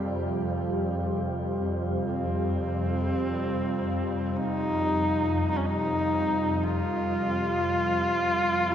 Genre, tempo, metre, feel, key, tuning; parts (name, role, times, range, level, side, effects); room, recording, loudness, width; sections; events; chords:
dark ambient drone; free time; A4 = 441 Hz
sweeping resonant pad; sustained chords; 0.0-8.7 s; C3 to G4; -30 LUFS; equal; chorus, shimmer reverb
swarming drone; drone; 0.0-8.7 s; F2; -31 LUFS; equal; built-in reverb
warm horsehead fiddle; melody; 2.1-8.7 s; C4 to F4; -27 LUFS; equal; shimmer reverb, analog delay
wet spring reverb, RT60 2.4 s; echo-heavy mix, nothing above 7.9 kHz; -25 LUFS; side -9 dB against mid
0.0-8.7 A section
0.0 Fsus2